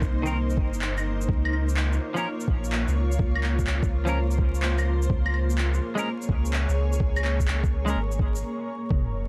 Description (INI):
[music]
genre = future garage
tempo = 126 BPM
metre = 4/4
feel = swing 67% on 16ths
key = unclear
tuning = A4 = 440 Hz
[part]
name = granular cloud pad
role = sustained chords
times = 0.0-9.3 s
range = Bb3 to Db5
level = -34 LUFS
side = equal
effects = built-in reverb, sidechain pumping
[part]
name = soft dub sub bass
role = bass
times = 0.0-9.3 s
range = F1 to Db2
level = -28 LUFS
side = equal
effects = sidechain pumping
[part]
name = electronic kick drum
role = drums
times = 0.0-9.0 s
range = none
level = -27 LUFS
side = equal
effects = none
[part]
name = electronic shaker, handclaps and claves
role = drums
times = 0.0-8.4 s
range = none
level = -34 LUFS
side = equal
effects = overdrive
[part]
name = clean electric guitar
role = accompaniment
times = 0.2-8.0 s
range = Eb3 to Bb4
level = -35 LUFS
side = equal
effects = lush chorus, sidechain pumping, analog delay
[part]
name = sub drop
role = sound effects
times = 8.9-9.3 s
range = none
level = -34 LUFS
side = equal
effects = none
[sound]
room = little or no reverb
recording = dry, gritty hardware recording, vinyl crackle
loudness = -25 LUFS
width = mono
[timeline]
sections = 0.0-8.9 A section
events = stop 8.4-8.9; impact 8.9-9.3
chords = 0.0 Cm7; 1.3 Db6; 5.1 Bbm7/Db